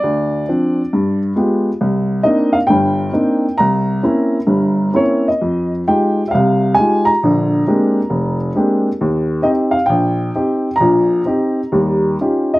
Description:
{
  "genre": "solo jazz",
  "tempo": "133 BPM",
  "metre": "4/4",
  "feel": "swing 67% on 8ths, rubato",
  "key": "Eb major",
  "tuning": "A4 = 442 Hz",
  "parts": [
    { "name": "warm upright piano", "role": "solo", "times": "0.0-12.6 s", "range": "F1 to Bb5", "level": "-13 LUFS", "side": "equal", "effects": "none" }
  ],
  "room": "little or no reverb",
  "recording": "recorded outdoors, with no room sound",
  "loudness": "-13 LUFS",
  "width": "side -18 dB against mid",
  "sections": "0.0-12.6 A section",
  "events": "none",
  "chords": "0.0 Dm7; 0.9 G7b9; 1.8 Cm9; 3.6 C7b9; 5.4 Fm9; 7.2 Bb13; 9.0 Eb6; 11.7 Eb9",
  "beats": "| 0.02 0.48 0.93 1.37 | 1.81 2.26 2.70 3.14 | 3.59 4.04 4.50 4.96 | 5.43 5.89 6.34 6.79 | 7.24 7.68 8.12 8.55 | 9.00 9.45 9.89 10.35 | 10.80 11.26 11.72 12.21"
}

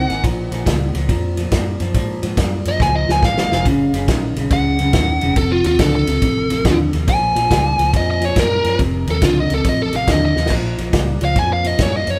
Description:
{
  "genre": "electric blues shuffle",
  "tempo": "140 BPM",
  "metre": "4/4",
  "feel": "swing 66% on 8ths",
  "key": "Bb minor",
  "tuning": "A4 = 442 Hz",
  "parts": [
    { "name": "biting lead guitar", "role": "melody", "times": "0.0-12.2 s", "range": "F4 to Ab5", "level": "-22 LUFS", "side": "equal", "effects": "overdrive, analog delay" },
    { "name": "electric guitar at the edge of break-up", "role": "riff", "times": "0.0-12.2 s", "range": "F2 to Bb3", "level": "-23 LUFS", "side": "equal", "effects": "none" },
    { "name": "vintage muted fingered electric bass", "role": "bass", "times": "0.0-12.2 s", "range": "Fb1 to Ab2", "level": "-24 LUFS", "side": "equal", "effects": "none" },
    { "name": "natural country drum kit", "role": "drums", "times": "0.1-12.1 s", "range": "crash cymbal, kick drum, ride cymbal, snare drum", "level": "-22 LUFS", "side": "equal", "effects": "none" }
  ],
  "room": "moderate stone room reverb, RT60 1.1 s",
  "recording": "band playing live in one room",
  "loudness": "-17 LUFS",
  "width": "mono",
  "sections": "0.0-10.5 A section; 10.5-12.2 A section",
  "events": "lead electric guitar solo 0.0-10.5, 10.5-12.2; drum fill 2.8-3.7, 10.3",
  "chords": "0.2 Bbm7; 3.7 Gb; 5.4 F7; 7.1 Bbm7; 8.8 F7; 10.5 Bbm",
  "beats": "| 0.24 0.66 1.09 1.52 | 1.95 2.37 2.80 3.23 | 3.65 4.08 4.51 4.94 | 5.37 5.79 6.22 6.65 | 7.08 7.51 7.93 8.36 | 8.79 9.22 9.65 10.08 | 10.51 10.94 11.36 11.79"
}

